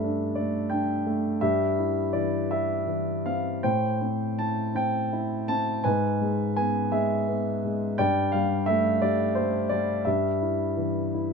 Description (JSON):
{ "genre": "classical, lyrical solo piano", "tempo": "53-59 BPM (dotted quarters)", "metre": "6/8", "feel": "rubato", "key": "A minor", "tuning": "A4 = 439 Hz", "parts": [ { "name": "dark baby grand piano", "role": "solo", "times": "0.0-11.3 s", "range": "G2 to A5", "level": "-24 LUFS", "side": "equal", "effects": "none" } ], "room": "light reverb", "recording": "faint mains hum", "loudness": "-24 LUFS", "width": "side -5 dB against mid", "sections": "0.0-11.3 A section", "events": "grand piano fill 11.1", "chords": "0.0 Gsus2; 1.4 C/G; 3.6 Am7; 5.8 E/G#; 8.0 Gsus2; 10.1 Em/G", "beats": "0.37 | 1.42 2.50 | 3.63 4.75 | 5.84 6.92 | 7.99 9.03 | 10.06 11.13" }